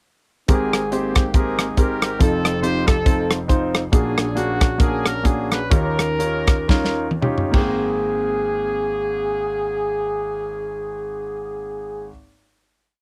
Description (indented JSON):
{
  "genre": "uptempo gospel",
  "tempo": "104-140 BPM",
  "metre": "4/4",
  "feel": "swing 57% on 8ths",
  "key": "Ab major",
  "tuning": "A4 = 439 Hz",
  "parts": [
    { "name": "warm horn section", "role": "melody", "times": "0.5-12.1 s", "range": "Bb3 to C5", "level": "-26 LUFS", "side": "equal", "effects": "none" },
    { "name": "clear concert grand piano", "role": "accompaniment", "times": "0.5-12.1 s", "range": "F1 to G5", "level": "-26 LUFS", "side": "equal", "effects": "none" },
    { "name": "modern studio drum kit", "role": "drums", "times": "0.5-7.7 s", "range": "crash cymbal, hi-hat, kick drum, rim click, snare drum, toms", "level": "-20 LUFS", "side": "equal", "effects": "none" }
  ],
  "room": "little or no reverb",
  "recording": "dry, close 1970s-style studio recording",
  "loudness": "-20 LUFS",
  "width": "mono",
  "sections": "0.5-7.8 breakdown; 7.8-12.4 final hit",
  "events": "slowing down 3.9-7.8; drum fill 6.7-7.8",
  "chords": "0.5 Abmaj9; 2.2 F7; 3.9 Bb7alt; 5.7 Eb9; 7.5 Abmaj9",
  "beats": "| 0.49 0.92 1.35 1.78 | 2.21 2.64 3.07 3.50 | 3.93 4.36 4.80 5.25 | 5.71 6.20 6.70 7.22 | 7.78 8.36 8.94 9.51 | 10.09 10.66 11.24 11.81"
}